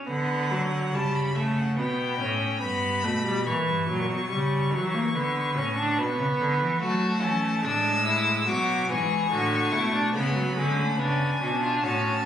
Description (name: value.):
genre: classical, baroque-style fugue for string quartet.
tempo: 72 BPM.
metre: 4/4.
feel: straight.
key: B minor.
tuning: A4 = 440 Hz.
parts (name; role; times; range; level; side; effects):
warm viola; accompaniment; 0.0-12.2 s; D3 to D4; -27 LUFS; equal; none.
clear violin; melody; 0.1-12.3 s; E5 to E6; -30 LUFS; left 4 dB; none.
rich cello; bass; 0.1-12.2 s; G2 to F#3; -28 LUFS; right 1 dB; none.
rich violin; second line; 6.8-12.2 s; B3 to G#4; -28 LUFS; left 2 dB; none.
room: moderate recital hall reverb, RT60 1.4 s.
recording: recorded on a phone in the room, club reverb.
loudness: -23 LUFS.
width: side -10 dB against mid.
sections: 0.1-12.3 A section.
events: none.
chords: 0.1 Bm/D; 1.8 Gadd9; 3.5 F#7; 5.1 Bm; 6.8 F#m; 8.5 G#m7b5; 10.1 C#7(no3).